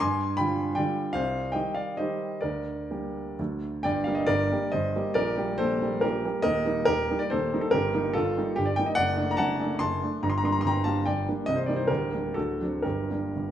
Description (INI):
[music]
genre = classical, romantic triple-time dance for piano with dotted rhythms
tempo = 113-167 BPM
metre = 3/4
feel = rubato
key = G minor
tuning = A4 = 442 Hz
[part]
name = warm baby grand piano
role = solo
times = 0.0-13.5 s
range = C1 to C6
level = -25 LUFS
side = equal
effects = none
[sound]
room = wet recital hall reverb, RT60 1.4 s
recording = minimal, uncompressed stereo recording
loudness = -25 LUFS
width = side -10 dB against mid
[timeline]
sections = 0.0-3.8 A section; 3.8-13.5 B section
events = none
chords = 0.0 G7; 1.2 Cm; 2.4 Gm/D; 3.4 D; 3.8 Gm; 5.2 Gm/Bb; 6.5 Eb; 7.7 Eb/G; 9.0 D/F#; 10.2 Gm; 11.5 Cm7; 11.9 Gm/D; 12.4 D7; 12.8 Gm